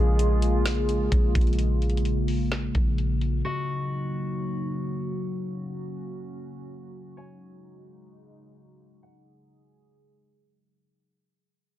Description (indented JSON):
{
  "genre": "hip hop, atmospheric cloud-rap",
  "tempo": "129 BPM",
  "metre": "4/4",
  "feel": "half-time",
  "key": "unclear",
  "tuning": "A4 = 440 Hz",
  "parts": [
    { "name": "dark analog pad", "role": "sustained chords", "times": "0.0-10.9 s", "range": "Db3 to Ab4", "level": "-29 LUFS", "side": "left 1 dB", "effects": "chorus, sidechain pumping" },
    { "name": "soft 808-style bass", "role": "bass", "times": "0.0-3.4 s", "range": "Bb1", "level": "-24 LUFS", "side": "equal", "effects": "none" },
    { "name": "nylon-string guitar", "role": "texture", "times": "0.0-10.9 s", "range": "Gb4 to Bb5", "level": "-35 LUFS", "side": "equal", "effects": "none" },
    { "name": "trap drum kit", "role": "drums", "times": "0.2-3.3 s", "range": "hi-hat, kick drum, snare drum", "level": "-27 LUFS", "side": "equal", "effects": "none" }
  ],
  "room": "little or no reverb",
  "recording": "dense, heavily limited modern master, low-pass filter",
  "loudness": "-24 LUFS",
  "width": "side -13 dB against mid",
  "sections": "0.0-10.9 A section",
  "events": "fade-out 0.0-10.9; filter sweep 0.0-10.9",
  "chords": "0.0 Bbm7; 3.4 Gb6; 7.2 Ab7sus4"
}